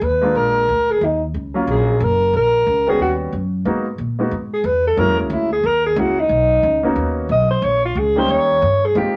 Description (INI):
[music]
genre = jazz, small-group swing and bop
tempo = 181 BPM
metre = 4/4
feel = swing 62% on 8ths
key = Eb minor, G# minor from 3.7 s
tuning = A4 = 444 Hz
[part]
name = breathy alto saxophone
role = melody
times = 0.0-9.2 s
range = C#4 to D#5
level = -18 LUFS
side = equal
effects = none
[part]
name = upright bass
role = bass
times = 0.0-9.2 s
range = Gb1 to A#2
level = -24 LUFS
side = equal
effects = none
[part]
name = warm upright piano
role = accompaniment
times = 0.2-9.2 s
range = Gb3 to G#4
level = -24 LUFS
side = equal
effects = none
[sound]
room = moderate studio reverb, RT60 0.5 s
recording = none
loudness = -18 LUFS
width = mono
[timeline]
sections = 0.0-3.7 A section; 3.7-9.2 B section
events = none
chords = 0.4 Bb7; 1.0 Ebm9; 2.3 Bbm; 3.0 Eb7alt; 3.7 G#m7; 5.0 F#7; 6.3 Bmaj7; 7.6 A#m; 8.3 D#7